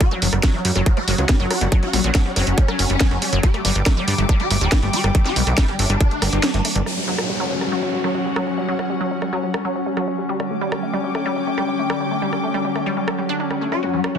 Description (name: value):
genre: psychedelic trance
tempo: 140 BPM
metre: 4/4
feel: straight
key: unclear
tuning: A4 = 440 Hz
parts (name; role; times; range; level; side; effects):
- swarming rave lead; melody; 0.0-6.8, 13.7-14.2 s; F#3 to G4; -25 LUFS; left 2 dB; chorus, phaser, sidechain pumping, digital delay
- evolving wavetable pad; sustained chords; 0.0-14.2 s; F#3 to C#4; -26 LUFS; left 1 dB; chorus, built-in reverb, sidechain pumping
- wide unison pluck; riff; 0.0-14.2 s; F#3 to A4; -26 LUFS; right 1 dB; auto-pan, sidechain pumping, digital delay
- drum and bass drum kit; drums; 0.0-14.1 s; hi-hat, rim click, snare drum; -24 LUFS; right 1 dB; none
- electronic kick drum; drums; 0.0-6.1 s; none; -17 LUFS; equal; none
- muted symphonic string section; texture; 0.0-14.2 s; D3 to D6; -28 LUFS; left 2 dB; sidechain pumping
- plucky analog bass; bass; 0.2-6.8 s; D1 to G2; -20 LUFS; equal; none
- downlifter; sound effects; 6.9-10.3 s; none; -28 LUFS; equal; none
room: light reverb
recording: dense, heavily limited modern master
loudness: -17 LUFS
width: side -8 dB against mid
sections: 0.0-6.9 A section; 6.9-14.2 B section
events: kick drops out 6.4-6.9; band accent 6.4; filter sweep on synth arpeggio sound 6.9-14.2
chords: 0.0 F#5; 3.4 G5; 6.9 F#5; 10.3 G5